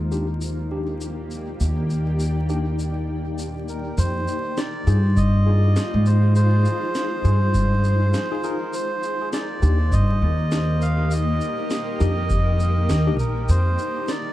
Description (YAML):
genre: ambient dub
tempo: 101 BPM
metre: 4/4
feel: swing 59% on 16ths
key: F dorian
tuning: A4 = 440 Hz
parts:
  - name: granular cloud pad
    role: sustained chords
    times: 0.0-14.3 s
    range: Bb3 to G5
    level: -30 LUFS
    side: left 2 dB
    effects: built-in reverb
  - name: upright bass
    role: bass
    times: 0.0-13.8 s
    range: Bb1 to Ab2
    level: -19 LUFS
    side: equal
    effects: none
  - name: tine electric piano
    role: stabs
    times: 0.1-13.2 s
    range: D4 to Ab4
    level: -32 LUFS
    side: left 3 dB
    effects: overdrive, fast stereo tremolo, dub echo
  - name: electronic shaker and snare drum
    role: drums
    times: 0.1-14.2 s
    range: none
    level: -32 LUFS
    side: equal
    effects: overdrive, dub echo
  - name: melodica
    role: melody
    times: 3.7-14.3 s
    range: Bb4 to F5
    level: -28 LUFS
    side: right 1 dB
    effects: vintage 12-bit sampler grit, dub echo
  - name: electronic kick drum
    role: drums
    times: 5.2-12.4 s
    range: none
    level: -24 LUFS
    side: equal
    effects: none
room: light reverb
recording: dark, warm production, vinyl crackle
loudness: -19 LUFS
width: side -14 dB against mid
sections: 0.0-4.0 A section; 4.0-14.3 B section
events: none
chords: 0.0 Ebmaj7; 4.0 Fm7; 8.7 Eb; 13.5 Fm7